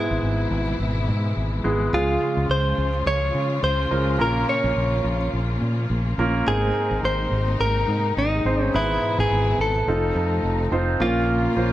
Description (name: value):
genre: piano-driven pop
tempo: 106 BPM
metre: 4/4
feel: swing 56% on 16ths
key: Db major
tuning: A4 = 440 Hz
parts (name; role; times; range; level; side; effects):
- direct-recorded clean electric guitar; melody; 0.0-11.7 s; Eb4 to Db5; -24 LUFS; equal; none
- warm concert grand piano; accompaniment; 0.0-11.7 s; G#2 to C5; -25 LUFS; right 1 dB; none
- warm studio string section; sustained chords; 0.0-11.7 s; B2 to F4; -30 LUFS; left 2 dB; none
- fingered electric bass; bass; 0.1-11.7 s; F1 to Db3; -24 LUFS; equal; none
room: light reverb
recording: none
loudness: -20 LUFS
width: side -14 dB against mid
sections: 0.0-11.0 A section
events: none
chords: 0.0 E/G#; 1.9 Db; 4.2 Bbm; 6.5 Abadd9; 8.7 E/G#; 9.9 F7; 11.0 Bbm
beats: 0.23 0.80 1.37 | 1.93 2.50 3.07 3.63 | 4.20 4.77 5.34 5.90 | 6.47 7.04 7.60 8.17 | 8.74 9.30 9.87 10.44 | 11.01 11.57